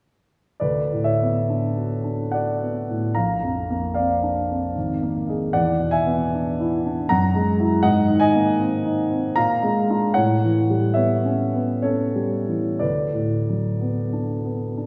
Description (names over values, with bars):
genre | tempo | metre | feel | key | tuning
classical, impressionist solo piano | 60-84 BPM | 3/4 | rubato | D lydian | A4 = 440 Hz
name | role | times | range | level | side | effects
warm concert grand piano | solo | 0.6-14.9 s | G#1 to Bb5 | -22 LUFS | equal | none
room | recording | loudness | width
wet scoring stage reverb, RT60 2.0 s | heard from further back in the room, studio ambience | -22 LUFS | mono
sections
0.6-14.9 A section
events
none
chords
0.6 D6; 3.1 Bbadd9; 4.8 G#sus2; 5.5 E7; 7.1 F#9; 7.8 G#add9; 9.4 Bb7; 10.1 A13; 12.8 D6